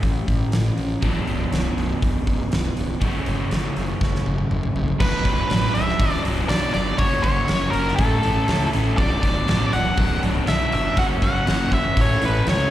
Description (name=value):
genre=classic rock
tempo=121 BPM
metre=4/4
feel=straight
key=B minor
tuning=A4 = 440 Hz
part: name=crunchy overdriven guitar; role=riff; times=0.0-12.7 s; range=B1 to A4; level=-24 LUFS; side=equal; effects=slapback echo
part: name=fuzz fingered electric bass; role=bass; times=0.0-12.6 s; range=B0 to C#2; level=-24 LUFS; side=equal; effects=overdrive
part: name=huge arena drum kit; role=drums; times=0.0-12.6 s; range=crash cymbal, hi-hat, kick drum, snare drum, toms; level=-24 LUFS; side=equal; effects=none
part: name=octave-fuzz lead guitar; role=melody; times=5.0-12.7 s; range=A4 to F#5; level=-24 LUFS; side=equal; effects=distortion, slapback echo
room=studio reverb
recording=live gig heard through the venue's PA, recital hall reverb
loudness=-18 LUFS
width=side -13 dB against mid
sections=0.0-5.0 A section; 5.0-12.7 B section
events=drum fill 4.0-5.0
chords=0.0 A; 1.0 Bm; 3.0 F#m; 5.0 Bm; 7.0 F#; 8.0 A; 9.0 Bm; 11.0 F#; 12.0 A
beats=0.03 0.53 | 1.03 1.52 2.02 2.52 | 3.02 3.51 4.01 4.51 | 5.00 5.50 6.00 6.50 | 6.99 7.49 7.99 8.49 | 8.98 9.48 9.98 10.48 | 10.97 11.47 11.97 12.47